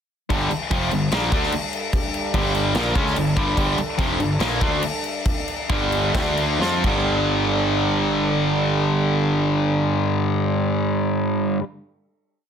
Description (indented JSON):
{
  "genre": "hard rock",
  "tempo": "124-147 BPM",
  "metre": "4/4",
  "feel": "straight",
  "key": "G minor",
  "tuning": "A4 = 445 Hz",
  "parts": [
    { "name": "lush unison pad", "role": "sustained chords", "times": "1.4-11.6 s", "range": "G3 to A4", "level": "-32 LUFS", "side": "right 1 dB", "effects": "chorus" },
    { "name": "distorted electric guitar", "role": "riff", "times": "0.3-11.6 s", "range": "F2 to F4", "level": "-23 LUFS", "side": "left 9 dB", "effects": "overdrive" },
    { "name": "distorted electric guitar", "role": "riff", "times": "0.3-11.6 s", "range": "F2 to F4", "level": "-23 LUFS", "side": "right 9 dB", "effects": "overdrive" },
    { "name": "fuzz picked electric bass", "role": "bass", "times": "0.3-11.6 s", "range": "F1 to F2", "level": "-26 LUFS", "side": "equal", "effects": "overdrive" },
    { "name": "big rock drum kit", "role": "drums", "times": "0.3-7.0 s", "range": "crash cymbal, kick drum, snare drum", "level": "-25 LUFS", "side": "equal", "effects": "none" }
  ],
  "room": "light reverb",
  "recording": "dense, heavily limited modern master",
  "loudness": "-19 LUFS",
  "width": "side -8 dB against mid",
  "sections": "0.3-7.1 riff; 7.1-10.9 final hit",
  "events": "slowing down 3.6-7.1; drum fill 6.6-7.1",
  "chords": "0.3 Gm; 6.1 D5; 6.6 F5; 6.8 G5",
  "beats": "| 0.30 0.71 1.12 1.53 | 1.94 2.35 2.75 3.17 | 3.58 3.99 4.40 4.83 | 5.25 5.69 6.14 6.60 | 7.08 7.56 8.04 8.52 | 9.01 9.49 9.97 10.45"
}